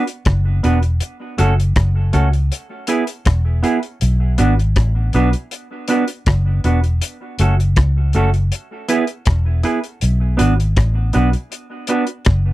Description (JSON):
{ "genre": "roots reggae", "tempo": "80 BPM", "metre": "4/4", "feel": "straight", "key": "B dorian", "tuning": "A4 = 440 Hz", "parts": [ { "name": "semi-hollow electric guitar", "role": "accompaniment", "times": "0.0-12.0 s", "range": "A3 to B4", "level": "-20 LUFS", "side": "right 2 dB", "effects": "tape echo" }, { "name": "damped 70s drum kit", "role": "drums", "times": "0.1-12.4 s", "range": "hi-hat, kick drum, rim click", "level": "-18 LUFS", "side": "equal", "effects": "none" }, { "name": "vintage muted fingered electric bass", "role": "bass", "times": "0.3-12.5 s", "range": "E1 to C#2", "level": "-15 LUFS", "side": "equal", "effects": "none" } ], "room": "little or no reverb", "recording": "dry, close 1970s-style studio recording", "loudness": "-15 LUFS", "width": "side -16 dB against mid", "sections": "0.0-12.5 A section", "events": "none", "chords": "0.0 Bm; 1.0 F#m; 2.5 E; 4.0 Bm; 7.0 F#m; 8.5 E; 10.0 Bm", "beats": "0.26 | 1.01 1.76 2.51 3.26 | 4.01 4.76 5.52 6.27 | 7.02 7.77 8.52 9.27 | 10.02 10.77 11.52 12.27" }